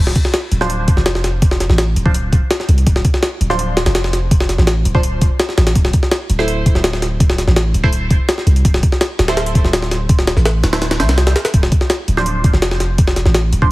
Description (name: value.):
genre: drum and bass, jungle.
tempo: 166 BPM.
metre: 4/4.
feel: straight.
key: D minor.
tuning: A4 = 440 Hz.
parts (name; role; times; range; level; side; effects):
long sustained 808-style bass; bass; 0.0-13.7 s; D1 to C2; -16 LUFS; equal; none.
jungle sampler-style drum kit; drums; 0.1-13.7 s; hi-hat, kick drum, snare drum; -14 LUFS; equal; none.
band-passed chord stab; stabs; 0.6-13.7 s; F3 to C5; -23 LUFS; right 2 dB; phaser, lush chorus, dub echo.
room: light reverb.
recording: heavily compressed radio sound, multiband compression, vinyl crackle.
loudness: -12 LUFS.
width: side -19 dB against mid.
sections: 0.0-13.7 A section.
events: none.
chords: 0.0 Dm7; 5.8 Am/D; 11.5 Dm7.